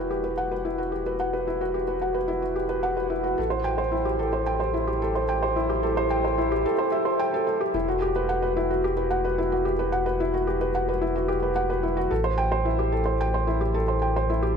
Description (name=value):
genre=piano and strings electronica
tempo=110 BPM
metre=4/4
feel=straight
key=E minor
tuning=A4 = 442 Hz
part: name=felt-muted upright piano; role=riff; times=0.0-14.6 s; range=E4 to G5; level=-24 LUFS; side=equal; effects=ping-pong delay
part: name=warm sub bass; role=bass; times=0.0-14.6 s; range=E1 to A1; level=-30 LUFS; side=equal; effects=none
room=wet huge ambient reverb, RT60 5.2 s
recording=none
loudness=-23 LUFS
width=side -6 dB against mid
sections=0.0-7.7 A section; 7.7-14.6 B section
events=build-up 0.0-7.7; drop 7.7-14.6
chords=0.0 Emadd9; 3.4 Am7; 7.7 Emadd9; 12.1 Am7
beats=0.11 0.66 | 1.20 1.75 2.29 2.84 | 3.38 3.93 4.47 5.02 | 5.57 6.11 6.66 7.20 | 7.75 8.29 8.84 9.38 | 9.93 10.47 11.02 11.56 | 12.11 12.66 13.20 13.75 | 14.29